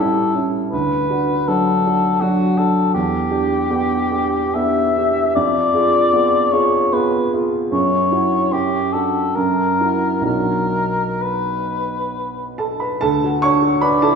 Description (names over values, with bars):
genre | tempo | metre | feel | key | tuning
classical, romantic duo for cor anglais and grand piano | 62-84 BPM | 3/4 | rubato | B minor | A4 = 439 Hz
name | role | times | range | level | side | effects
dark cor anglais | melody | 0.0-14.2 s | F#4 to E5 | -18 LUFS | left 3 dB | none
warm baby grand piano | accompaniment | 0.0-14.2 s | A1 to C#6 | -18 LUFS | right 2 dB | none
room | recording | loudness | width
wet recital hall reverb, RT60 1.7 s | heard from further back in the room | -15 LUFS | side -6 dB against mid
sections
0.0-13.0 A section; 13.0-14.2 B section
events
none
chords
0.0 A7; 0.7 D; 2.9 Em7; 5.4 Fdim7; 7.7 F#5; 8.5 Dadd11/F#; 9.4 F#7; 10.3 Bm; 13.0 D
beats
| 0.73 1.48 2.21 | 2.94 3.70 4.55 | 5.35 6.13 6.93 | 7.73 8.53 9.36 | 10.26 11.22 12.14 | 13.02 13.82